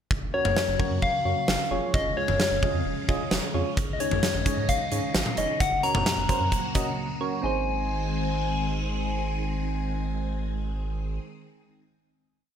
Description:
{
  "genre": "synth-pop",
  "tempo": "131 BPM",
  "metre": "4/4",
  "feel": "straight",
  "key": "Ab mixolydian",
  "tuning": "A4 = 441 Hz",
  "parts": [
    { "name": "phased string machine", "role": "sustained chords", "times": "0.2-11.2 s", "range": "Db3 to Ab4", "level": "-33 LUFS", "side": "left 1 dB", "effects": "ensemble chorus, phaser" },
    { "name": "round analog bass", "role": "bass", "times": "0.1-11.2 s", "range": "F1 to Ab2", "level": "-31 LUFS", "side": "equal", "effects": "none" },
    { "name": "huge arena drum kit", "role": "drums", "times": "0.1-6.9 s", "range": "hi-hat, kick drum, snare drum, toms", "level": "-27 LUFS", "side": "equal", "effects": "none" },
    { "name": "soft struck synth lead", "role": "melody", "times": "0.3-11.2 s", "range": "Db5 to Bb5", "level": "-29 LUFS", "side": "left 3 dB", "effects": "chorus, ping-pong delay" },
    { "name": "soft electric-piano-like synth keys", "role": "accompaniment", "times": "0.3-11.2 s", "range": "C4 to Eb5", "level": "-33 LUFS", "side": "right 4 dB", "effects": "chorus" }
  ],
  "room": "moderate plate reverb, RT60 1.1 s, small room ambience",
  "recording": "bright 1980s-style digital production",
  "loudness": "-24 LUFS",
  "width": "side -8 dB against mid",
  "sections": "0.1-7.4 pre-chorus; 7.4-11.1 final chord",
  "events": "break 7.0-7.4",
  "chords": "0.1 Gb; 1.7 Db/F; 5.6 Gb; 7.4 Ab"
}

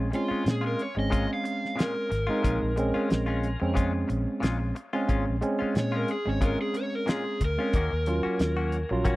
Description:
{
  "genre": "straight-eighth soul blues",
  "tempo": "91 BPM",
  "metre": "4/4",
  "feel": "swing 54% on 16ths",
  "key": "Bb minor",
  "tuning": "A4 = 440 Hz",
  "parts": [
    { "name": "tine electric piano", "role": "accompaniment", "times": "0.0-9.2 s", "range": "Gb3 to F4", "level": "-29 LUFS", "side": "right 2 dB", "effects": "none" },
    { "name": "vintage muted fingered electric bass", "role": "bass", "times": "0.0-9.2 s", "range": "Ab1 to Bb2", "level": "-30 LUFS", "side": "equal", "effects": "none" },
    { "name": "direct-recorded clean electric guitar", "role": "stabs", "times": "0.1-9.2 s", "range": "Bb2 to Gb4", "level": "-35 LUFS", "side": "left 4 dB", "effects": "spring reverb" },
    { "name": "cloth-damped thuddy drum kit", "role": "drums", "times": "0.1-9.2 s", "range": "hi-hat, kick drum, snare drum", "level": "-27 LUFS", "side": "equal", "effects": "none" },
    { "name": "overdriven slide guitar", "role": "melody", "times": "0.2-9.2 s", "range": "F4 to F5", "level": "-31 LUFS", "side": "equal", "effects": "none" }
  ],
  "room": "studio reverb",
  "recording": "dry, close 1970s-style studio recording",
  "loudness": "-25 LUFS",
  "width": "side -18 dB against mid",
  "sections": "0.0-9.2 A section",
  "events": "electric slide guitar solo 0.0-9.2",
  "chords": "0.0 Bbm7; 7.7 Ebm7"
}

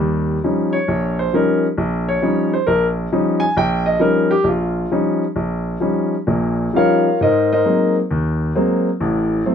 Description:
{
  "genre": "solo jazz",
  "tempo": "133 BPM",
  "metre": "4/4",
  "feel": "swing 67% on 8ths, rubato",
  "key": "Eb mixolydian",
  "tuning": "A4 = 440 Hz",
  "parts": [
    { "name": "warm baby grand piano", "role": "solo", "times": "0.0-9.5 s", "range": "A1 to Ab5", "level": "-15 LUFS", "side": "left 1 dB", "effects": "none" }
  ],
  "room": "light reverb",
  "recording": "minimal, uncompressed stereo recording",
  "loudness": "-15 LUFS",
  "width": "side -8 dB against mid",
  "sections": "0.0-9.5 A section",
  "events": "grand piano solo 0.0-9.5",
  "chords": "0.0 Eb9; 7.2 Ab9; 9.0 Am6"
}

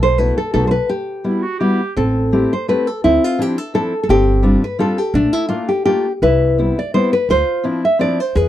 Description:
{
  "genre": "musette waltz",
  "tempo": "170 BPM",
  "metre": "3/4",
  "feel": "rubato",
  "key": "unclear",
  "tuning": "A4 = 440 Hz",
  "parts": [
    { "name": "nylon-string guitar", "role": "melody", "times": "0.0-8.5 s", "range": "A3 to E5", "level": "-16 LUFS", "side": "equal", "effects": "none" },
    { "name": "upright bass", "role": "bass", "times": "0.0-8.5 s", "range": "G1 to E2", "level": "-18 LUFS", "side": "right 1 dB", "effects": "none" },
    { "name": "fingerpicked steel-string acoustic guitar", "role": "accompaniment", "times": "0.2-8.2 s", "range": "F3 to G4", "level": "-18 LUFS", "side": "left 2 dB", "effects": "none" },
    { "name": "mellow clarinet", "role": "second line", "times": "1.3-1.9 s", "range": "E4 to G4", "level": "-22 LUFS", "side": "right 4 dB", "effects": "none" }
  ],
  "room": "light reverb",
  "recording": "dry, close 1970s-style studio recording",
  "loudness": "-14 LUFS",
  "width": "side -12 dB against mid",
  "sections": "0.0-2.0 A section; 2.0-8.5 B section",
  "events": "break 0.9-2.0",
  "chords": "0.0 B7sus4; 0.5 B7; 0.9 Emadd9; 2.0 Am7; 3.0 Dm9; 4.1 G7sus4; 5.1 Bbmaj7; 6.2 Cmaj7; 7.3 Dm9"
}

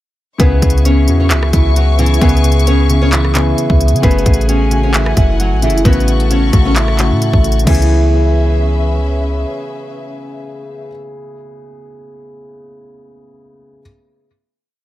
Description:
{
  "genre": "hip hop, trap",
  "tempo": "132 BPM",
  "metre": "4/4",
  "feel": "half-time",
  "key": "C# minor",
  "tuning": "A4 = 440 Hz",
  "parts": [
    { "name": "nylon-string guitar", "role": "melody", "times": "0.4-9.0 s", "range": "E3 to C#5", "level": "-18 LUFS", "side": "right 1 dB", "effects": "analog delay" },
    { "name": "dark concert grand piano", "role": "accompaniment", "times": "0.4-13.8 s", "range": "C#3 to G#4", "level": "-20 LUFS", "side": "left 2 dB", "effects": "analog delay" },
    { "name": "dark studio string section", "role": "sustained chords", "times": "0.4-10.9 s", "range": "C#4 to C#6", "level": "-25 LUFS", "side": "left 3 dB", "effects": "none" },
    { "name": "warm 808-style bass", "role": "bass", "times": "0.4-9.4 s", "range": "F#1 to C#3", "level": "-13 LUFS", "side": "equal", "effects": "none" },
    { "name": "trap drum kit", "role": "drums", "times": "0.4-7.9 s", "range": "crash cymbal, handclaps, hi-hat, kick drum, rim click", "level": "-15 LUFS", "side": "equal", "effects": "none" }
  ],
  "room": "small room ambience",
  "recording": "echo-heavy mix",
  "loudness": "-10 LUFS",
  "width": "side -15 dB against mid",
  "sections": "0.4-7.7 hook; 7.7-11.3 final chord",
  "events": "none",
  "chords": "0.4 C#m7; 4.0 F#madd9; 5.9 A6; 7.7 C#m7"
}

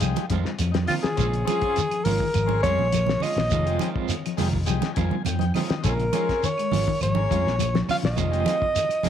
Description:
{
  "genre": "afrobeat",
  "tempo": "103 BPM",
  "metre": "4/4",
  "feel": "straight",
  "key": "Bb dorian",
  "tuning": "A4 = 440 Hz",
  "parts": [
    { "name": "combo organ", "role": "accompaniment", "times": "0.0-9.1 s", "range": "Ab3 to Ab5", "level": "-34 LUFS", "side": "left 13 dB", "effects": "none" },
    { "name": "mellow electric guitar", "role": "arpeggios", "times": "0.0-8.9 s", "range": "Db3 to Ab3", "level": "-31 LUFS", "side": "left 11 dB", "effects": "tremolo" },
    { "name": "fingered electric bass", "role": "bass", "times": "0.0-9.1 s", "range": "F1 to F2", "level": "-26 LUFS", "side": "equal", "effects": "none" },
    { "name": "cloth-damped thuddy drum kit", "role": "drums", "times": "0.0-9.1 s", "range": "hi-hat, kick drum, snare drum", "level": "-31 LUFS", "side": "left 4 dB", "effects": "none" },
    { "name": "claves", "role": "percussion", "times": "0.0-9.0 s", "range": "none", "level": "-42 LUFS", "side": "right 12 dB", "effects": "none" },
    { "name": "shekere", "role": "percussion", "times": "0.0-9.1 s", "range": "none", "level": "-31 LUFS", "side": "right 4 dB", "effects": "none" },
    { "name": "congas", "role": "percussion", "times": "0.2-9.1 s", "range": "none", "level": "-29 LUFS", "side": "right 10 dB", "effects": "none" },
    { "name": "electric guitar at the edge of break-up", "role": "stabs", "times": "0.3-9.1 s", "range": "Eb3 to F4", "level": "-32 LUFS", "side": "right 10 dB", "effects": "tremolo" },
    { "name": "breathy alto saxophone", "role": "melody", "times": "0.9-9.1 s", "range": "F4 to F5", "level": "-25 LUFS", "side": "equal", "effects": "tape echo" }
  ],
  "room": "moderate spring reverb, RT60 2.4 s",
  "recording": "1960s-style stereo with parts hard left and right",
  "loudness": "-21 LUFS",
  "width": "side -9 dB against mid",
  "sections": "0.0-9.1 A section",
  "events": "transistor combo organ fill 4.7-5.8",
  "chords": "0.0 Fm7; 1.2 Bbm7; 3.5 Fm7; 5.8 Bbm7; 8.2 Fm7"
}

